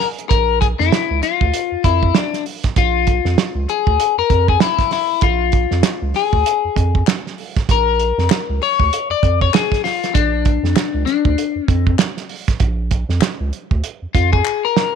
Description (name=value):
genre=funk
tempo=98 BPM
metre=4/4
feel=swing 60% on 16ths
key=Bb mixolydian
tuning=A4 = 445 Hz
part: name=electric guitar at the edge of break-up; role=accompaniment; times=0.0-14.9 s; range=D4 to D5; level=-18 LUFS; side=left 13 dB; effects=wide subtle chorus
part: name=cloth-damped thuddy drum kit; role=drums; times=0.0-14.9 s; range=hi-hat, kick drum, snare drum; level=-18 LUFS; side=right 5 dB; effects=none
part: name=round analog bass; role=bass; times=0.3-14.4 s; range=Bb1 to F2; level=-18 LUFS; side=right 1 dB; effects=none
part: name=group handclap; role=percussion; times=5.8-14.6 s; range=none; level=-28 LUFS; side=left 12 dB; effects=none
room=studio ambience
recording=1960s-style stereo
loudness=-14 LUFS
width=side -7 dB against mid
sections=0.0-15.0 A section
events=clean electric guitar solo 0.0-15.0; drum fill 14.5-15.0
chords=0.0 Bb7